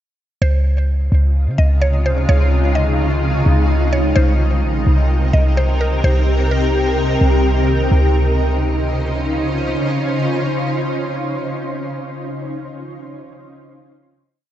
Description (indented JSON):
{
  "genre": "hip hop, atmospheric cloud-rap",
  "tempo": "128 BPM",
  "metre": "4/4",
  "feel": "half-time",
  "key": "Db lydian",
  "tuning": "A4 = 441 Hz",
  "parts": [
    { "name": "mallet-like synth pluck", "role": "melody", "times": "0.4-7.0 s", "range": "Bb4 to Eb5", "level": "-25 LUFS", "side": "equal", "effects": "chorus, tape echo" },
    { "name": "granular cloud pad", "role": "sustained chords", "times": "1.6-12.1 s", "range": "C3 to C5", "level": "-19 LUFS", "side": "equal", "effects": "built-in reverb, ensemble chorus" },
    { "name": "clean 808-style bass", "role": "bass", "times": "0.4-9.8 s", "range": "Bb1 to Db3", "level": "-15 LUFS", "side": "equal", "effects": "none" }
  ],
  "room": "light reverb, digital ambience",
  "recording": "nothing above 7.6 kHz",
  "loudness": "-14 LUFS",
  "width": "side -12 dB against mid",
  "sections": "0.4-7.9 verse; 7.9-11.7 final chord",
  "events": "none",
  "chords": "0.4 Dbmaj9; 4.2 Cm7; 7.9 Dbmaj9",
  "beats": "| 0.42 0.89 1.35 1.82 | 2.29 2.76 3.23 3.70 | 4.17 4.63 5.10 5.57 | 6.04 6.51 6.98 7.45 | 7.92 8.38 8.85 9.32 | 9.79 10.26 10.73 11.20"
}